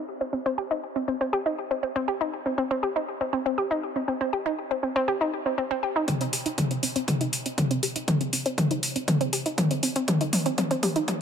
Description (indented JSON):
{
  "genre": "melodic techno",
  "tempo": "120 BPM",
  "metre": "4/4",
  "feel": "straight",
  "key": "C minor",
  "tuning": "A4 = 443 Hz",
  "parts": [
    { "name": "analog pluck", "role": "arpeggios", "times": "0.0-11.0 s", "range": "C4 to G4", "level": "-26 LUFS", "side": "equal", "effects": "chorus, sidechain pumping, ping-pong delay" },
    { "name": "deep house drum kit", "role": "drums", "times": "6.1-11.2 s", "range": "hi-hat, toms", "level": "-25 LUFS", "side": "left 1 dB", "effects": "overdrive, low-pass filter on hats, low-pass filter on toms, low-pass filter on room" },
    { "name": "electronic kick drum", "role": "drums", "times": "6.1-11.2 s", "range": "none", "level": "-32 LUFS", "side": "right 1 dB", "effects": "overdrive, high-pass filter on kick, high-pass filter on room" }
  ],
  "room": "light reverb, digital ambience",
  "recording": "high-pass filter",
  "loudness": "-24 LUFS",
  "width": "side -7 dB against mid",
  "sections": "0.0-6.1 A section; 6.1-11.2 B section",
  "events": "filter sweep on synth arpeggio sound 0.0-6.1, 6.1-11.2; build-up 6.1-11.2; drum fill 6.1-11.2",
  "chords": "none"
}